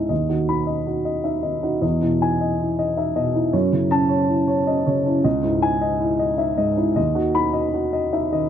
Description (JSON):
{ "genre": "neoclassical minimalist piano", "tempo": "105 BPM", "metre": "3/4", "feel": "rubato", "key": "unclear", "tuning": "A4 = 441 Hz", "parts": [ { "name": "dark upright piano", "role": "solo", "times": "0.0-8.5 s", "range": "C#2 to B5", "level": "-18 LUFS", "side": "equal", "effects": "none" } ], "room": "light reverb", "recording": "close, detailed microphones", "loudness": "-18 LUFS", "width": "side -9 dB against mid", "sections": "0.0-8.5 A section", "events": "none", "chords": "0.1 B/D#; 1.8 Emaj7; 3.5 F#m7; 5.2 C#madd9; 7.0 B/D#" }